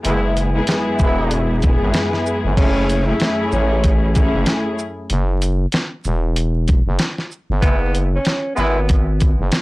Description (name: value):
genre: hip hop, boom-bap hip-hop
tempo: 95 BPM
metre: 4/4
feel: swing 57% on 16ths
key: F# minor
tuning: A4 = 439 Hz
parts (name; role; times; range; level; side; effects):
- warm studio string section; accompaniment; 0.0-4.7 s; F#2 to G#4; -20 LUFS; left 1 dB; high-pass filter, low-pass filter
- clear horn section; stabs; 0.0-1.4, 7.6-8.8 s; E3 to E4; -25 LUFS; equal; high-pass filter, low-pass filter, analog delay
- dusty soul sampler-style drum kit; drums; 0.0-9.6 s; crash cymbal, hi-hat, kick drum, shaker, snare drum; -18 LUFS; equal; none
- growling FM bass; bass; 0.1-9.5 s; E1 to A1; -18 LUFS; equal; transformer saturation
- breathy tenor saxophone; melody; 2.6-9.0 s; B3 to E4; -24 LUFS; right 1 dB; high-pass filter, low-pass filter, analog delay
room: light reverb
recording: blown-out, overdriven recording, vinyl crackle, overdrive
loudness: -15 LUFS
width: side -21 dB against mid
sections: 0.0-2.6 A section; 2.6-9.6 A section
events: none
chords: 0.0 E/F#; 2.6 F#m7; 7.6 E/F#